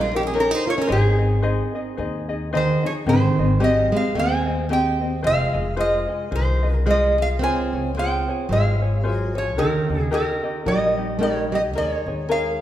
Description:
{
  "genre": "Hawaiian",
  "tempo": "111 BPM",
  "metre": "4/4",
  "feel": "swing 58% on 8ths",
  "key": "Ab major",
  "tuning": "A4 = 435 Hz",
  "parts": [
    { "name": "lap resonator guitar", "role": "melody", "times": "0.0-12.6 s", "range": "F4 to Ab5", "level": "-23 LUFS", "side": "right 2 dB", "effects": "none" },
    { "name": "picked plugged-in steel-string acoustic guitar", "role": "second line", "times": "0.0-12.6 s", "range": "Eb3 to F4", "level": "-27 LUFS", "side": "right 3 dB", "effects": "none" },
    { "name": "ukulele", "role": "accompaniment", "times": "0.0-12.6 s", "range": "C4 to Eb5", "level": "-25 LUFS", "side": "left 3 dB", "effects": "none" },
    { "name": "upright bass", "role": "bass", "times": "0.0-12.6 s", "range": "F1 to Eb2", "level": "-24 LUFS", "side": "left 1 dB", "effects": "none" }
  ],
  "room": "wet recital hall reverb, RT60 1.6 s",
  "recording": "recorded in a church or concert hall",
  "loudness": "-18 LUFS",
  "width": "side -12 dB against mid",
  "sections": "0.0-3.1 A section; 3.1-12.6 B section",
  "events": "none",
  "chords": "0.0 Eb7; 0.9 Ab; 3.1 Abmaj7; 5.2 Fm7; 7.4 Dbmaj7; 9.6 Eb; 11.7 Eb7sus4",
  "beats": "0.36 | 0.90 1.44 1.98 2.53 | 3.07 3.61 4.15 4.69 | 5.24 5.78 6.32 6.86 | 7.41 7.95 8.49 9.03 | 9.57 10.12 10.66 11.20 | 11.74 12.28"
}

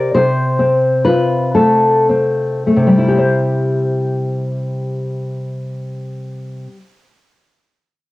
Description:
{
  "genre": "romantic piece for solo classical guitar",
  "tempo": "34-48 BPM (dotted quarters)",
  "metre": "6/8",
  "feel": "rubato",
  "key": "C major",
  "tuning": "A4 = 440 Hz",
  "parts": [
    { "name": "nylon-string guitar", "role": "solo", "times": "0.0-7.1 s", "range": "C3 to D5", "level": "-14 LUFS", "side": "left 1 dB", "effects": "none" }
  ],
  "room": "light reverb, small room ambience",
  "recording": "home recording on cassette",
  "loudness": "-13 LUFS",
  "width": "side -18 dB against mid",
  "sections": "0.0-3.2 A section; 3.2-6.1 B section",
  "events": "slowing down 0.0-3.2",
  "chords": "0.2 F/C; 3.2 C",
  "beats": "| 0.18 1.57 | 3.18 4.63"
}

